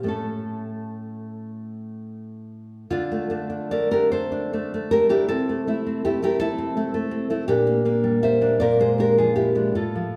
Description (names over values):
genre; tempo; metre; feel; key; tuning
romantic piece for solo classical guitar; 42-55 BPM (dotted quarters); 6/8; rubato; D minor; A4 = 440 Hz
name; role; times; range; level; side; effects
nylon-string guitar; solo; 0.0-10.2 s; A2 to E5; -23 LUFS; equal; none
room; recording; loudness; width
wet recital hall reverb, RT60 1.7 s; recorded in a church or concert hall; -22 LUFS; mono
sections
0.0-2.9 A section; 2.9-10.2 B section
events
none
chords
0.1 A; 2.9 Dm; 5.3 Am/C; 7.5 Gm/Bb; 8.6 Bb7